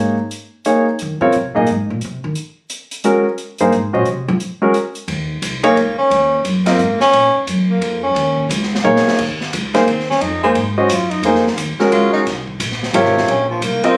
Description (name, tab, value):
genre	modal jazz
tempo	176 BPM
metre	3/4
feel	swing 62% on 8ths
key	Eb dorian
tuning	A4 = 437 Hz
part	warm concert grand piano	accompaniment	0.0-6.8, 8.8-14.0 s	C3 to Eb5	-16 LUFS	equal	none
part	upright bass	bass	0.0-13.9 s	Ab1 to F3	-24 LUFS	equal	none
part	open jazz drum kit	drums	0.3-13.9 s	crash cymbal, hi-hat, kick drum, ride cymbal, snare drum	-27 LUFS	equal	none
part	breathy tenor saxophone	second line	5.7-14.0 s	F3 to F4	-18 LUFS	equal	none
room	light reverb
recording	recorded on a phone in the room, studio ambience, compression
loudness	-16 LUFS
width	mono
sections	0.0-5.1 A section; 5.1-14.0 A section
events	upright bass solo 0.0-5.1; tenor saxophone solo 5.1-14.0; drum fill 8.8-9.2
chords	0.0 Eb7(no3); 1.0 Fm7 (rootless); 5.1 Ebm7; 9.2 Fm7; 13.3 Eb7sus2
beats	0.31 0.66 | 1.00 1.34 1.68 | 2.02 2.36 2.70 | 3.04 3.39 3.73 | 4.07 4.41 4.75 | 5.09 5.43 5.78 | 6.12 6.46 6.80 | 7.14 7.48 7.83 | 8.17 8.51 8.85 | 9.19 9.53 9.88 | 10.22 10.56 10.90 | 11.24 11.58 11.93 | 12.27 12.61 12.95 | 13.29 13.63